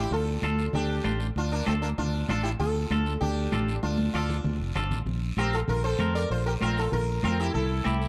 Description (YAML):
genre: latin, cumbia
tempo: 194 BPM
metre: 4/4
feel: straight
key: D minor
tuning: A4 = 440 Hz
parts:
  - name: sitar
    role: melody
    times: 0.0-8.1 s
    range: A3 to D5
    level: -33 LUFS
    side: equal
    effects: none
  - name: clean electric guitar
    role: accompaniment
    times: 0.0-8.1 s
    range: C4 to C5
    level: -37 LUFS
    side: equal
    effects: none
  - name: fingered electric bass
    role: bass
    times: 0.0-8.1 s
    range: F1 to F2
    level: -31 LUFS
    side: equal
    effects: none
  - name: congas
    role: percussion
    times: 0.1-8.0 s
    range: none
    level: -35 LUFS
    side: equal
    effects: none
  - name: guiro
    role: percussion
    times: 0.1-8.1 s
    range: none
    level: -48 LUFS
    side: equal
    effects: none
room: light reverb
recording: none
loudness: -27 LUFS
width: mono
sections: 0.1-8.1 A section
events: drum fill 3.8-5.1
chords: 0.1 Dm; 5.1 Bbsus2; 7.5 C